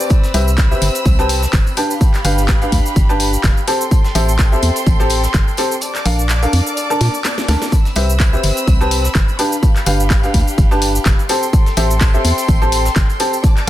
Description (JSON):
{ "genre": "piano house", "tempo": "126 BPM", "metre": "4/4", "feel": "swing 56% on 16ths", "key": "unclear", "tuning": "A4 = 440 Hz", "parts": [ { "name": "dark studio violin section", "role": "sustained chords", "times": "0.0-13.7 s", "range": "C4 to E6", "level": "-24 LUFS", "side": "equal", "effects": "vintage 12-bit sampler grit, sidechain pumping" }, { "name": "bright upright piano", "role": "riff", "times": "0.0-13.3 s", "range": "C4 to A5", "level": "-20 LUFS", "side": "equal", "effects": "sidechain pumping, ping-pong delay" }, { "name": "house drum kit", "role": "drums", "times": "0.0-13.7 s", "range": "handclaps, hi-hat, shaker, snare drum", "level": "-22 LUFS", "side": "left 1 dB", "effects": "none" }, { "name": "tambourine", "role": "percussion", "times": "0.0-13.7 s", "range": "none", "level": "-32 LUFS", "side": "right 4 dB", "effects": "none" }, { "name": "breakbeat sampler-style drum kit", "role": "drums", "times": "0.1-13.7 s", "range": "hi-hat, snare drum", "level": "-31 LUFS", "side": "equal", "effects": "none" }, { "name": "electronic kick drum", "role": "drums", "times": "0.1-13.5 s", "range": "none", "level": "-13 LUFS", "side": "equal", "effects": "none" }, { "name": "organ-like FM bass", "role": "bass", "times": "0.3-13.0 s", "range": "F1 to Bb2", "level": "-16 LUFS", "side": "equal", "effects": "sidechain pumping" } ], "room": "digital ambience", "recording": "dense, heavily limited modern master", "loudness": "-12 LUFS", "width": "side -14 dB against mid", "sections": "0.0-13.7 A section", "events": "kick drops out 5.8-7.7; drum fill 7.0-7.7", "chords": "0.1 Cmaj7; 1.8 G7; 3.7 Am7; 5.8 Bbmaj7; 7.7 Cmaj7; 9.4 G7; 11.3 Am7" }